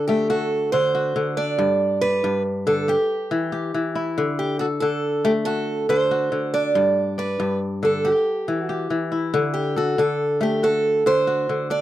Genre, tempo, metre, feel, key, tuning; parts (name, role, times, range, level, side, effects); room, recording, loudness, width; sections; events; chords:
west african traditional, West African string and xylophone music; 93 BPM (dotted quarters); 12/8; straight; A4 = 440 Hz
picked old ladder-braced acoustic guitar; melody; 0.0-11.8 s; F#4 to D5; -21 LUFS; right 3 dB
kora; arpeggios; 0.0-11.8 s; G2 to D5; -23 LUFS; left 3 dB
light reverb; dry, close 1970s-style studio recording; -19 LUFS; side -13 dB against mid
0.0-11.8 A section
0.0 D; 1.6 G; 2.9 Em; 4.2 D; 6.8 G; 8.1 Em; 9.3 D